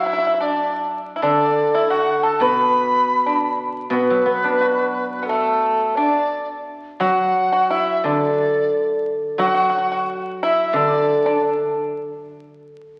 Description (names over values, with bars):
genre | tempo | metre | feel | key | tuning
chinese traditional, Chinese chamber ensemble | 89 BPM | 4/4 | rubato | D gong mode | A4 = 441 Hz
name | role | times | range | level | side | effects
large dizi | melody | 0.0-11.4 s | A4 to B5 | -24 LUFS | equal | none
pipa | second line | 0.0-11.4 s | A3 to B4 | -24 LUFS | equal | none
guzheng | accompaniment | 0.0-12.7 s | B2 to F#4 | -24 LUFS | equal | none
room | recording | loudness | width
wet scoring stage reverb, RT60 2.0 s | very old 78 rpm record, vinyl crackle | -19 LUFS | mono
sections
0.0-6.7 A section; 6.7-13.0 B section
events
none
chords
none